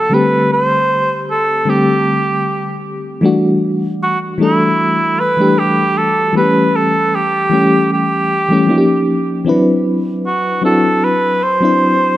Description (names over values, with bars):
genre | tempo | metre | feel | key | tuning
R&B | 77 BPM | 4/4 | swing 54% on 16ths | E minor | A4 = 439 Hz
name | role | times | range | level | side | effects
mellow cor anglais | melody | 0.0-12.2 s | E4 to C5 | -15 LUFS | right 1 dB | digital delay
FM electric piano with tremolo | accompaniment | 0.0-12.2 s | D3 to F#5 | -14 LUFS | left 1 dB | none
room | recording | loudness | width
light reverb, studio reverb | none | -12 LUFS | side -14 dB against mid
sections
0.0-3.2 A section; 3.2-12.2 B section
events
none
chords
0.1 D7sus4; 3.2 Em11; 6.3 A7; 8.7 D#9; 9.5 D13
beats
| 0.11 0.89 1.67 2.45 | 3.23 4.01 4.79 5.57 | 6.35 7.13 7.91 8.68 | 9.46 10.24 11.02 11.80